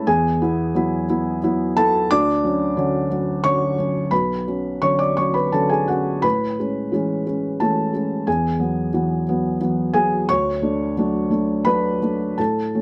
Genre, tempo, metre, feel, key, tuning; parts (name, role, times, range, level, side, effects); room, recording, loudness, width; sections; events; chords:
neoclassical minimalist piano; 88 BPM; 3/4; rubato; A4 = 440 Hz
felt-muted upright piano; solo; 0.0-12.8 s; B1 to D6; -20 LUFS; equal
light reverb; dark, warm production; -21 LUFS; mono
0.0-12.8 A section
0.1 Eadd9; 2.1 Dmaj7; 4.1 Bmadd9; 6.2 Amaj7; 8.3 Eadd9; 10.3 Dmaj7